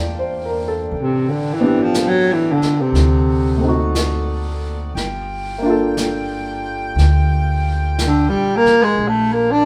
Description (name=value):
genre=jazz ballad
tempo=59 BPM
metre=4/4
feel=swing 68% on 8ths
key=G minor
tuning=A4 = 440 Hz
part: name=warm baby grand piano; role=accompaniment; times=0.0-9.7 s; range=A3 to A5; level=-24 LUFS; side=equal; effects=none
part: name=clear saxophone section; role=sustained chords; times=0.0-9.7 s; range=Bb3 to G5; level=-31 LUFS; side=equal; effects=none
part: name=upright bass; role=bass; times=0.0-9.7 s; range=G1 to E2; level=-22 LUFS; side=equal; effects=none
part: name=vintage brush drum kit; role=drums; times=0.9-9.7 s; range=brushed snare drum, hi-hat, snare drum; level=-30 LUFS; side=equal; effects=none
part: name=breathy baritone saxophone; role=melody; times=1.0-9.7 s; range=C3 to D4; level=-17 LUFS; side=equal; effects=none
room=moderate stone room reverb, RT60 1.0 s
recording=band playing live in one room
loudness=-18 LUFS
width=mono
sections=0.0-9.7 A section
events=baritone saxophone solo 0.0-9.7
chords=0.0 Bbmaj7; 0.9 Am11; 2.9 D7b9; 4.9 Gm9